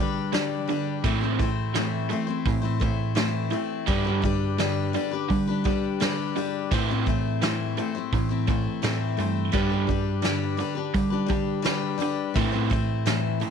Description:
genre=folk rock and heartland rock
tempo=85 BPM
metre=4/4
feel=straight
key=A minor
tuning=A4 = 439 Hz
part: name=picked steel-string acoustic guitar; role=accompaniment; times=0.0-13.5 s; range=A2 to C5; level=-28 LUFS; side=left 11 dB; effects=none
part: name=overdriven electric guitar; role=riff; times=0.0-13.5 s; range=G2 to C4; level=-31 LUFS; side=right 13 dB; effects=none
part: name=hollow-body short-scale fingered electric bass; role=bass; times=0.0-13.4 s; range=G2 to G3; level=-28 LUFS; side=right 2 dB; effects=none
part: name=soft brush drum kit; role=drums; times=0.3-13.5 s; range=hi-hat, kick drum, snare drum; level=-29 LUFS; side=right 2 dB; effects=none
room=small room ambience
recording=1960s-style stereo with parts hard left and right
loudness=-23 LUFS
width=side -7 dB against mid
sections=0.0-13.5 A section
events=none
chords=0.0 G; 1.1 Am; 3.9 G; 6.7 Am; 9.6 G; 12.4 Am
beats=0.34 | 1.05 1.76 2.47 3.18 | 3.89 4.60 5.31 6.01 | 6.72 7.43 8.14 8.84 | 9.55 10.26 10.96 11.67 | 12.37 13.08

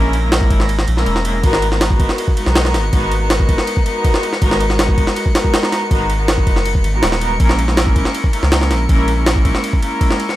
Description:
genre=drum and bass, jungle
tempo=161 BPM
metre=4/4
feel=straight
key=unclear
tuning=A4 = 440 Hz
part: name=rich chamber string section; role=sustained chords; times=0.0-10.4 s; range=G#3 to A#4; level=-19 LUFS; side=equal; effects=none
part: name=soft dub sub bass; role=bass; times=0.0-9.5 s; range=D#1 to C#2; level=-17 LUFS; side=equal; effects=none
part: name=drifting glass-harmonics texture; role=texture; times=0.0-10.4 s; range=A#6 to C#7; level=-28 LUFS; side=left 4 dB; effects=chorus, built-in reverb
part: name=jungle sampler-style drum kit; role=drums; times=0.1-10.4 s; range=kick drum, ride cymbal, snare drum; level=-16 LUFS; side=equal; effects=overdrive
room=little or no reverb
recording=dry, gritty hardware recording, faint mains hum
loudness=-13 LUFS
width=side -15 dB against mid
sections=0.0-10.4 A section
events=break 0.7-1.4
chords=0.0 A#m7b5; 1.4 G#m9; 7.4 A#m7b5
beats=0.32 0.69 1.06 | 1.44 1.81 2.18 2.56 | 2.93 3.30 3.67 4.05 | 4.42 4.79 5.17 5.54 | 5.91 6.28 6.66 7.03 | 7.40 7.77 8.15 8.52 | 8.89 9.26 9.64 10.01

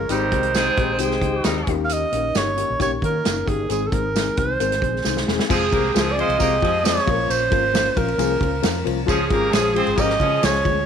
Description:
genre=uptempo 1960s-style soul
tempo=134 BPM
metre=4/4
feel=straight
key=F minor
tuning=A4 = 440 Hz
part: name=breathy alto saxophone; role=melody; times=0.0-10.9 s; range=Ab4 to F5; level=-22 LUFS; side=right 3 dB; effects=none
part: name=mellow tonewheel organ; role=sustained chords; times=0.0-10.9 s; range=Eb3 to Bb4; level=-33 LUFS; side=right 1 dB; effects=chorus vibrato, slow rotary speaker
part: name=vintage muted fingered electric bass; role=bass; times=0.0-10.8 s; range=E1 to Eb3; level=-27 LUFS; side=right 1 dB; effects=none
part: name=clear horn section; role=second line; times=0.1-1.8, 5.5-10.6 s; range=Eb3 to G5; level=-25 LUFS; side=equal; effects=none
part: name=dark upright piano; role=accompaniment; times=0.1-10.8 s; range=F3 to Bb4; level=-25 LUFS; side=left 13 dB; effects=none
part: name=natural country drum kit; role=drums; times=0.1-10.8 s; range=crash cymbal, hi-hat, kick drum, ride cymbal, snare drum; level=-24 LUFS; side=right 1 dB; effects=none
part: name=tambourine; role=percussion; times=0.1-10.5 s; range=none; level=-33 LUFS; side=right 16 dB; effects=none
room=moderate plate reverb, RT60 2.0 s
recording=1960s-style stereo with parts hard left and right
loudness=-18 LUFS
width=side -7 dB against mid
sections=0.0-5.5 A section; 5.5-10.9 B section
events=drum fill 5.0-5.5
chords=0.1 Abmaj7; 1.7 Eb7; 3.7 Ab; 5.5 Fm; 7.1 Bbm; 9.1 Db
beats=| 0.10 0.55 1.00 1.45 | 1.90 2.35 2.80 3.25 | 3.70 4.15 4.60 5.05 | 5.50 5.95 6.39 6.84 | 7.29 7.74 8.19 8.64 | 9.08 9.53 9.98 10.43

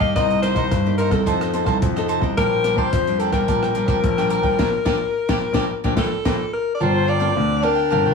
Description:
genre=samba and choro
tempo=108 BPM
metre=4/4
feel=straight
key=Bb major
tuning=A4 = 440 Hz
part: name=clear alto saxophone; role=melody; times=0.0-8.1 s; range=A4 to Eb5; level=-22 LUFS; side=left 4 dB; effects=none
part: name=cavaquinho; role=accompaniment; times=0.0-8.1 s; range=D4 to G5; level=-26 LUFS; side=right 6 dB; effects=none
part: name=nylon-string guitar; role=accompaniment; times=0.0-8.1 s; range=G2 to Bb4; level=-26 LUFS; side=left 4 dB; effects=none
part: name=warm concert grand piano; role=bass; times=0.0-8.1 s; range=G1 to G2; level=-23 LUFS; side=left 1 dB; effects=none
part: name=compact cocktail drum kit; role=drums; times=0.0-6.4 s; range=hi-hat, kick drum, rim click, snare drum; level=-24 LUFS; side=equal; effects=none
part: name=clear clarinet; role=second line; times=6.8-8.1 s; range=D4 to F4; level=-24 LUFS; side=right 2 dB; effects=none
room=moderate studio reverb, RT60 0.8 s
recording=studio reverb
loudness=-17 LUFS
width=side -5 dB against mid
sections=0.0-6.8 A section; 6.8-8.1 B section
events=band accent 4.6-6.8; drum fill 6.3-6.8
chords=0.2 Cm7; 1.3 F7; 2.4 Bb6; 6.8 Gm11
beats=| 0.16 0.72 1.27 1.82 | 2.38 2.93 3.49 4.04 | 4.59 5.15 5.70 6.26 | 6.81 7.36 7.92

